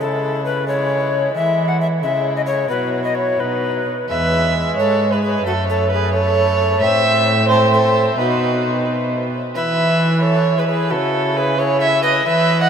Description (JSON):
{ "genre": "classical, renaissance-style consort dance", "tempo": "88 BPM (dotted quarters)", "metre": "6/8", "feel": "straight", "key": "E major", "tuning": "A4 = 440 Hz", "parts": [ { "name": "alto recorder", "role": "melody", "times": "0.0-12.7 s", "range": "F#4 to F#5", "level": "-22 LUFS", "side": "left 4 dB", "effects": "none" }, { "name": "dark violin", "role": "second line", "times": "0.0-12.7 s", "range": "D#4 to F#5", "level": "-18 LUFS", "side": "right 3 dB", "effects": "none" }, { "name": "clear bassoon", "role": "accompaniment", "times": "0.0-12.7 s", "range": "F#3 to E4", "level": "-25 LUFS", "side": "left 2 dB", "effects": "none" }, { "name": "warm cello", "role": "bass", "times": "0.0-12.7 s", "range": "E2 to E3", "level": "-21 LUFS", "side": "right 1 dB", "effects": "none" } ], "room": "wet huge ambient reverb, RT60 7.8 s", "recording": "in a vast, echoing space", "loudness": "-15 LUFS", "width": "side -7 dB against mid", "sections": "0.0-4.1 A section; 4.1-12.7 A section", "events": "none", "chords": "0.0 C#m; 2.7 Bsus4; 4.1 E; 5.5 F#m; 6.8 Am; 8.2 B; 9.6 E5; 10.9 C#m", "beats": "0.67 | 1.34 2.02 | 2.71 3.40 | 4.10 4.78 | 5.46 6.14 | 6.82 7.50 | 8.18 8.87 | 9.55 10.24 | 10.91 11.59 | 12.27" }